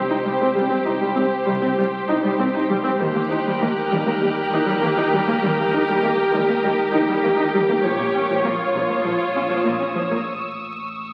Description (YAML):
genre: cinematic, suspense film score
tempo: 99 BPM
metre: 4/4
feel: straight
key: unclear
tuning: A4 = 441 Hz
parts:
  - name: muted studio violin section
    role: melody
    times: 0.0-10.2 s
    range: A#4 to C#5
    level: -28 LUFS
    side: equal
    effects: none
  - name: muted studio violin section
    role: second line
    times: 0.0-10.3 s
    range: E#4 to G4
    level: -25 LUFS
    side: equal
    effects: none
  - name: muted studio cello section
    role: riff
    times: 0.0-10.2 s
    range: A#2 to D#4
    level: -33 LUFS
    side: equal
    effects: none
  - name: muted studio cello section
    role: bass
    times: 0.0-10.2 s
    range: C2 to A#2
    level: -34 LUFS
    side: equal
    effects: none
  - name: muted symphonic double bass section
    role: bass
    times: 0.0-10.0 s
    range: A#1 to D#2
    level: -38 LUFS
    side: equal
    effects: none
  - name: sub bass with octave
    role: drone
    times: 0.0-11.1 s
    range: A1 to D#2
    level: -41 LUFS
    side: equal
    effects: none
  - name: muted studio viola section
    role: accompaniment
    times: 0.1-10.2 s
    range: E#3 to Eb4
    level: -25 LUFS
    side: equal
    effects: none
  - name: muted studio violin section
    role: texture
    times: 3.0-11.1 s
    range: C#6 to F#6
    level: -34 LUFS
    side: equal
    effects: none
room: wet recital hall reverb, RT60 1.4 s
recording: very old 78 rpm record, vinyl crackle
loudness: -20 LUFS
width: mono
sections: 0.0-11.1 A section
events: break 10.3-11.1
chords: 0.0 C5; 3.0 D#; 7.9 A#m; 10.3 A